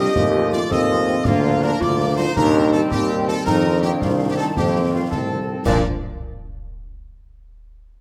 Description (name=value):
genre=military-style march for wind band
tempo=109 BPM (dotted quarters)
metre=6/8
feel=straight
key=Bb major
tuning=A4 = 437 Hz
part: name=warm trumpet section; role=melody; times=0.0-5.8 s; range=F4 to Eb5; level=-29 LUFS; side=equal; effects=none
part: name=dark euphonium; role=second line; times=0.0-5.4 s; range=A3 to F4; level=-27 LUFS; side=equal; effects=none
part: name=large flute ensemble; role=second line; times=0.0-5.9 s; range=D5 to Eb6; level=-31 LUFS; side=equal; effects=none
part: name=mellow woodwind section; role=second line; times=0.0-5.8 s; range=A3 to A4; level=-29 LUFS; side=equal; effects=none
part: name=dark French horn section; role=accompaniment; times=0.0-5.8 s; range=Eb3 to D4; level=-32 LUFS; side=equal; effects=none
part: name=bright trombone section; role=sustained chords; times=0.0-5.8 s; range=Eb3 to F4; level=-30 LUFS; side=equal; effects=none
part: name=clear tuba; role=bass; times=0.0-5.8 s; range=C2 to Bb2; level=-24 LUFS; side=equal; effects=none
part: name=concert snare drum, concert bass drum and clash cymbals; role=drums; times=0.2-5.9 s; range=none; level=-30 LUFS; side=equal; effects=none
room=wet large studio reverb, RT60 1.4 s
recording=none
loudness=-19 LUFS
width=mono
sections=0.0-5.7 A section; 5.7-6.8 B section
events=none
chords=0.2 F7/Eb; 1.3 Bb/D; 2.4 Cm/Eb; 3.5 F7sus4; 5.7 Bb